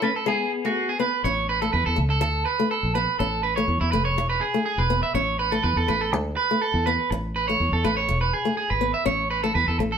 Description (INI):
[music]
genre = highlife guitar band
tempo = 123 BPM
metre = 4/4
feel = straight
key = A major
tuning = A4 = 440 Hz
[part]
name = clean electric guitar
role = melody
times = 0.0-1.0 s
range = B3 to A4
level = -27 LUFS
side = left 5 dB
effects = harmonic tremolo
[part]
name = fingerpicked acoustic archtop guitar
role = accompaniment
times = 0.0-10.0 s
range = G#3 to C#4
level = -28 LUFS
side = left 4 dB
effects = none
[part]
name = electric guitar at the edge of break-up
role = arpeggios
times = 0.0-10.0 s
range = E4 to E5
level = -23 LUFS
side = right 4 dB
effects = none
[part]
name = fingered electric bass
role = bass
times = 1.2-10.0 s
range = E1 to E2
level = -26 LUFS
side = equal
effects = none
[sound]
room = moderate studio reverb, RT60 0.8 s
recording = band playing live in one room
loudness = -21 LUFS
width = side -7 dB against mid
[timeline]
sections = 0.0-1.2 A section; 1.2-10.0 B section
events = break 0.0-1.2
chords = 0.3 G#m7; 1.2 A; 2.2 D5; 3.2 A; 4.2 E; 5.2 A; 6.1 D5; 7.1 A; 8.1 E; 9.1 A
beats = 0.27 0.76 | 1.25 1.73 2.22 2.71 | 3.20 3.69 4.17 4.66 | 5.15 5.64 6.13 6.61 | 7.10 7.59 8.08 8.57 | 9.05 9.54